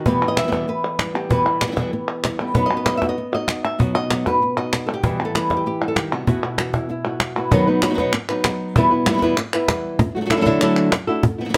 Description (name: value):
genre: flamenco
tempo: 193 BPM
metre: 4/4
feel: straight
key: unclear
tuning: A4 = 441 Hz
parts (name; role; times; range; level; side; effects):
- flamenco guitar; melody; 0.0-11.6 s; B2 to E5; -23 LUFS; equal; none
- flamenco guitar; stabs; 0.0-11.6 s; E2 to F#4; -28 LUFS; equal; none
- cajon; percussion; 0.1-11.6 s; none; -24 LUFS; equal; none
- palmas hand claps; percussion; 0.2-11.6 s; none; -27 LUFS; equal; none
room: moderate studio reverb, RT60 0.8 s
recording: none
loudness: -20 LUFS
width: mono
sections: 0.0-7.5 A section; 7.5-11.6 B section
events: none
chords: 0.1 Em; 2.5 B; 5.0 Em; 6.3 Bsus4; 7.5 B; 8.8 Em; 10.0 Dadd9